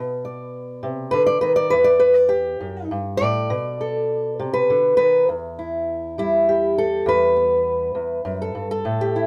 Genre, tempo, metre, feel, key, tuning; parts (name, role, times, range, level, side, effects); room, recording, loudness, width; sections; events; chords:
acoustic country blues, solo or duo; 67 BPM (dotted quarters); 12/8; straight; E minor; A4 = 443 Hz
fingerpicked old ladder-braced acoustic guitar; solo; 0.0-9.3 s; E2 to D5; -20 LUFS; equal
little or no reverb; close, detailed microphones; -20 LUFS; mono
0.0-5.3 A section; 5.3-9.3 B section
steel-string acoustic guitar solo 0.0-5.3
0.0 B; 1.7 Em; 3.5 B7#9; 5.3 Em